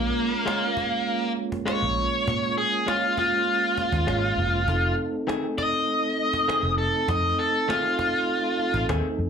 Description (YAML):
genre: straight-eighth soul blues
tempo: 100 BPM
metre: 4/4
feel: straight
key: Bb minor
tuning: A4 = 442 Hz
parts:
  - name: overdriven electric guitar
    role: melody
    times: 0.0-8.9 s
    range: Bb3 to Eb5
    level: -24 LUFS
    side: left 1 dB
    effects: slapback echo
  - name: mellow tonewheel organ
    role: accompaniment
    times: 0.0-9.3 s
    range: Ab3 to A4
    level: -29 LUFS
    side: right 4 dB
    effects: slow rotary speaker, chorus vibrato, slapback echo
  - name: vintage muted fingered electric bass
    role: bass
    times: 0.0-9.3 s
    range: F1 to Bb2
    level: -27 LUFS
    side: equal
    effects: none
  - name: cajon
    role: drums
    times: 0.2-9.3 s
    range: none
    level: -36 LUFS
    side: equal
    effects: slapback echo
  - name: direct-recorded clean electric guitar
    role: stabs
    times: 0.5-9.1 s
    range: Eb3 to G#4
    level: -31 LUFS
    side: left 5 dB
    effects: slapback echo
room: light reverb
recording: live gig heard through the venue's PA, club reverb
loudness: -22 LUFS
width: side -7 dB against mid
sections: 0.0-9.3 A section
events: overdriven electric guitar solo 0.0-9.3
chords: 0.0 Bbm7; 4.7 F7#9